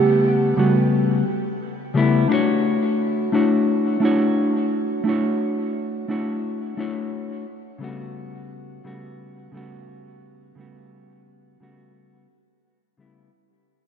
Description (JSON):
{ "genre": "chillout", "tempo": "87 BPM", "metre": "4/4", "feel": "straight", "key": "unclear", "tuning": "A4 = 440 Hz", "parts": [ { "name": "mellow electric guitar", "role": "accompaniment", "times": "0.0-13.3 s", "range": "C#3 to F#5", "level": "-20 LUFS", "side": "moving between left 4 dB and right 2 dB", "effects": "auto-pan, low-pass filter, shimmer reverb, diffuse ambient delay" } ], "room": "wet plate reverb, RT60 2.8 s", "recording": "dreamy mix soaked in reverb", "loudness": "-19 LUFS", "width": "side -7 dB against mid", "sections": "0.0-13.3 A section", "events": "fade-out 0.0-13.3; filter sweep on clean electric guitar 0.0-13.3", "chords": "0.0 A13; 2.3 Dmaj9; 7.5 A13", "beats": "0.23 0.92 1.61 | 2.30 2.99 3.68 4.37 | 5.05 5.75 6.43 7.12 | 7.81 8.50 9.19 9.88 | 10.57 11.26 11.95 12.64" }